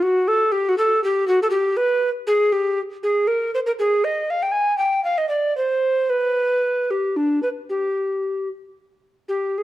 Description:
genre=classical, baroque-style fantasia for unaccompanied recorder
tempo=73-82 BPM (dotted quarters)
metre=12/8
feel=rubato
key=unclear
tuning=A4 = 440 Hz
part: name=mellow hollow tenor recorder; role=solo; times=0.0-9.6 s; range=D4 to Ab5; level=-18 LUFS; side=equal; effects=none
room=moderate large studio reverb, RT60 1.3 s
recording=dark, warm production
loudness=-18 LUFS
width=side -14 dB against mid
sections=0.0-9.3 A section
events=none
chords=none

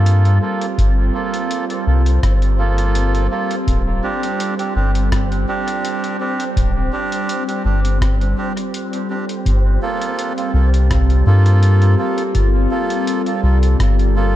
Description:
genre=ambient dub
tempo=83 BPM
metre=4/4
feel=straight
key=G minor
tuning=A4 = 439 Hz
part: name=warbly tape-like pad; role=sustained chords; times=0.0-14.4 s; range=G3 to A4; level=-23 LUFS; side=equal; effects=chorus, built-in reverb, phaser
part: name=melodica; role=stabs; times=0.0-14.4 s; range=Bb3 to A4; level=-23 LUFS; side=right 3 dB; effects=low-pass filter, dub echo
part: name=soft dub sub bass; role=bass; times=0.0-14.4 s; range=D1 to G2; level=-14 LUFS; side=equal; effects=none
part: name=wind-like tuned noise texture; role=texture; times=0.0-14.4 s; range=C4 to C5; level=-28 LUFS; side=left 1 dB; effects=built-in reverb
part: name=lo-fi sampler-style drum kit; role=drums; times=0.1-14.1 s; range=hi-hat, rim click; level=-31 LUFS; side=left 1 dB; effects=studio reverb, dub echo
part: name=electronic kick drum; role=drums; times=0.8-13.9 s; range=none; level=-20 LUFS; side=equal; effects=studio reverb
room=digital ambience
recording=dark, warm production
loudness=-15 LUFS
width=side -13 dB against mid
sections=0.0-14.4 A section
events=none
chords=0.0 Gm9; 3.7 D7sus4; 9.5 Gm9

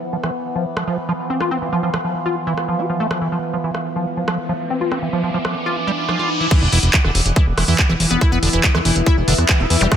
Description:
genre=psychedelic trance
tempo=141 BPM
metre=4/4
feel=straight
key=unclear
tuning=A4 = 441 Hz
part: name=overtone-sweeping drone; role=sustained chords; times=0.0-10.0 s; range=E3 to B3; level=-26 LUFS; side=equal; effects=chorus, built-in reverb, sidechain pumping
part: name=deep dark ambient pad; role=texture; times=1.2-10.0 s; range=E4 to E6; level=-27 LUFS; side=equal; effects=chorus, built-in reverb, sidechain pumping
part: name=liquid acid bass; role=riff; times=0.1-10.0 s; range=D3 to G4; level=-22 LUFS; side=moving between left 4 dB and right 3 dB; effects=chorus, auto-pan, sidechain pumping, digital delay
part: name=drum and bass drum kit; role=drums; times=0.2-10.0 s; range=crash cymbal, handclaps, hi-hat, rim click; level=-21 LUFS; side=equal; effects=none
part: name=riser and zap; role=sound effects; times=4.1-6.5, 9.8-9.9 s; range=none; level=-26 LUFS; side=equal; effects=none
part: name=electronic kick drum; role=drums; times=6.5-10.0 s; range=none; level=-15 LUFS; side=equal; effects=overdrive
part: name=fat analog bass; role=bass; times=6.6-9.9 s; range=E1 to E2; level=-18 LUFS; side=equal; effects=none
room=light reverb, digital ambience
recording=none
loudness=-16 LUFS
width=side -9 dB against mid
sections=0.0-6.5 A section; 6.5-10.0 B section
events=riser 4.1-6.5; drop 6.5-10.0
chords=0.0 F5; 6.5 E5

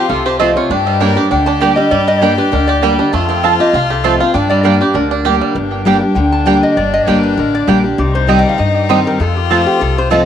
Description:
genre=bluegrass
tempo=198 BPM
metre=4/4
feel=swing 54% on 8ths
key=G minor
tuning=A4 = 436 Hz
part: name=lap resonator guitar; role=melody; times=0.0-10.3 s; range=F4 to A5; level=-17 LUFS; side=left 1 dB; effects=tape echo
part: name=clear fiddle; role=second line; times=0.0-10.3 s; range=D4 to Bb4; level=-20 LUFS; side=left 13 dB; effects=none
part: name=picked steel-string acoustic guitar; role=accompaniment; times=0.0-10.3 s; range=F2 to G4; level=-15 LUFS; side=left 1 dB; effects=none
part: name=bluegrass banjo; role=arpeggios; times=0.0-5.6 s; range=G3 to G4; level=-18 LUFS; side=right 11 dB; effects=none
part: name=upright bass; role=bass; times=0.1-10.2 s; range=G1 to G2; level=-19 LUFS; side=left 1 dB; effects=none
part: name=mandolin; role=stabs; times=0.4-10.2 s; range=Bb3 to A5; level=-19 LUFS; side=right 11 dB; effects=tape echo
room=light reverb, small room ambience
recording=1960s-style stereo with parts hard left and right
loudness=-10 LUFS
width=side -9 dB against mid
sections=0.0-5.6 A section; 5.6-10.3 A section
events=none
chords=0.0 F; 0.7 Gm; 3.1 F; 4.3 Gm; 8.0 Cm; 9.2 F

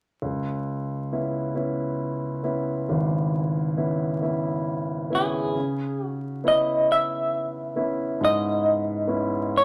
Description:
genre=acoustic folk-pop ballad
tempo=45 BPM (dotted quarters)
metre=6/8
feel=straight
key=C# minor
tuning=A4 = 440 Hz
part: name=warm grand piano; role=accompaniment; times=0.2-9.6 s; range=G#1 to E4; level=-28 LUFS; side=equal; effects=none
part: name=semi-hollow electric guitar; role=melody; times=5.2-9.6 s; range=G#4 to E5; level=-25 LUFS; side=equal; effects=tremolo
room=wet large studio reverb, RT60 0.8 s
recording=vinyl crackle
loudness=-26 LUFS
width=mono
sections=0.2-5.5 A section; 5.5-9.6 B section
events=none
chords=0.2 C#m7

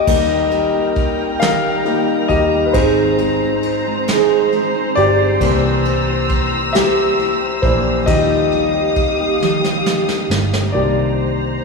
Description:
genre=six-eight pop ballad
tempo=45 BPM (dotted quarters)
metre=6/8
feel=straight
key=Eb major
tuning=A4 = 440 Hz
part: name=warm concert grand piano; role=accompaniment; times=0.0-11.6 s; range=Eb3 to F5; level=-17 LUFS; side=left 3 dB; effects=none
part: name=warm studio string section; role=sustained chords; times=0.0-11.6 s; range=G4 to E6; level=-21 LUFS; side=equal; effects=none
part: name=picked steel-string acoustic guitar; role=arpeggios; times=0.0-10.8 s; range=Ab2 to Ab4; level=-22 LUFS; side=right 7 dB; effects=none
part: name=vintage muted fingered electric bass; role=bass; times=0.0-11.6 s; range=G1 to Eb2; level=-23 LUFS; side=equal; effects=none
part: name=soft brush drum kit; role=drums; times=0.1-10.7 s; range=crash cymbal, kick drum, ride cymbal, snare drum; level=-23 LUFS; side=right 1 dB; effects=none
room=wet concert hall reverb, RT60 2.3 s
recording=recorded in a church or concert hall, small room ambience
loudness=-14 LUFS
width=side -3 dB against mid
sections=0.1-10.7 A section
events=grand piano solo 0.1-10.7; drum fill 9.4-10.7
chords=0.1 Eb; 2.7 Ab; 5.4 C7; 8.1 Ebadd9; 10.7 Cm7

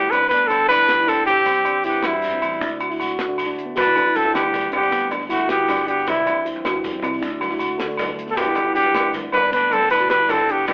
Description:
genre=highlife guitar band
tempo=104 BPM (dotted quarters)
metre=12/8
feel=straight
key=G major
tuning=A4 = 440 Hz
part: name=clear trumpet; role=melody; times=0.0-10.7 s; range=E4 to B4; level=-20 LUFS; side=equal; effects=none
part: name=edgy tenor saxophone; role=second line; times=0.0-10.7 s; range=G3 to D4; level=-30 LUFS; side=equal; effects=none
part: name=semi-hollow electric guitar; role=accompaniment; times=0.0-10.7 s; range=G2 to F#4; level=-39 LUFS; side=equal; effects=none
part: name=harp-like synth pluck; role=arpeggios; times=0.0-10.7 s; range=B3 to A4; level=-29 LUFS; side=equal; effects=chorus
part: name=fingered electric bass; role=bass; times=0.0-10.7 s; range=G1 to C3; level=-38 LUFS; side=equal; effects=none
part: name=damped 70s drum kit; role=drums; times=0.1-10.7 s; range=hi-hat, kick drum, snare drum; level=-34 LUFS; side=equal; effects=none
part: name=agogo bells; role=percussion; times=0.1-10.7 s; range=none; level=-30 LUFS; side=equal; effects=none
part: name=shekere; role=percussion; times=0.2-10.7 s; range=none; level=-39 LUFS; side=equal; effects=none
part: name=congas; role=percussion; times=3.8-10.7 s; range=none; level=-33 LUFS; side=equal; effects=none
room=moderate studio reverb, RT60 0.8 s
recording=band playing live in one room, telephone sound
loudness=-20 LUFS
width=mono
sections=0.0-10.7 A section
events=none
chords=0.0 G; 1.5 C; 2.6 D; 3.8 G; 6.1 C; 7.2 D; 8.4 G

